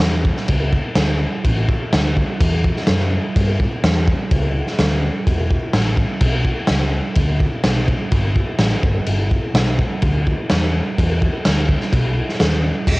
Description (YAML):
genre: garage rock duo or trio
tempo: 126 BPM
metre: 4/4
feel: straight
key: unclear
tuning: A4 = 442 Hz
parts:
  - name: hollow-body short-scale picked electric bass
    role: bass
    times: 0.0-13.0 s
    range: E1 to G2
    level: -19 LUFS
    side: equal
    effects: tube saturation
  - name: raw garage drum kit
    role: drums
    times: 0.0-13.0 s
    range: crash cymbal, kick drum, snare drum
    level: -18 LUFS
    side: equal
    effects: cassette tape
room: little or no reverb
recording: home recording on cassette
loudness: -16 LUFS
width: side -22 dB against mid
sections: 0.0-12.9 A section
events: none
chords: none